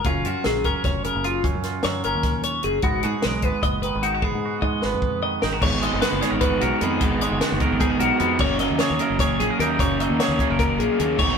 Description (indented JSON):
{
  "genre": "math rock and midwest emo",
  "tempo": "302 BPM (eighths)",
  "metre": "7/8",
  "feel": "straight",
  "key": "F# major",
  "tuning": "A4 = 443 Hz",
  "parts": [
    { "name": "twangy electric guitar", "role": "accompaniment", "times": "0.0-11.4 s", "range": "F#2 to A#4", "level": "-27 LUFS", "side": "right 5 dB", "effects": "none" },
    { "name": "twelve-string electric guitar", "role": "arpeggios", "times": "0.0-11.4 s", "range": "E#4 to D#5", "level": "-24 LUFS", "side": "left 4 dB", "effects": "none" },
    { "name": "fingered electric bass", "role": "bass", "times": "0.0-11.4 s", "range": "E#1 to G#2", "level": "-28 LUFS", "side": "equal", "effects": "none" },
    { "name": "compact cocktail drum kit", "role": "drums", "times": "0.0-11.3 s", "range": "crash cymbal, hi-hat, kick drum, snare drum", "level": "-25 LUFS", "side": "equal", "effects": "none" },
    { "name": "raw garage guitar", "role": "riff", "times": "5.6-11.4 s", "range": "F#2 to D#4", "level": "-24 LUFS", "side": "right 1 dB", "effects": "overdrive" }
  ],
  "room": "moderate stone room reverb, RT60 1.1 s",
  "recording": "band playing live in one room",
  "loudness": "-19 LUFS",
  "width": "side -6 dB against mid",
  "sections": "0.0-5.6 A section; 5.6-11.4 B section",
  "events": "drum fill 4.2-5.6",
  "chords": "0.1 F#maj7; 2.8 G#m7; 5.6 G#m9; 8.4 F#69"
}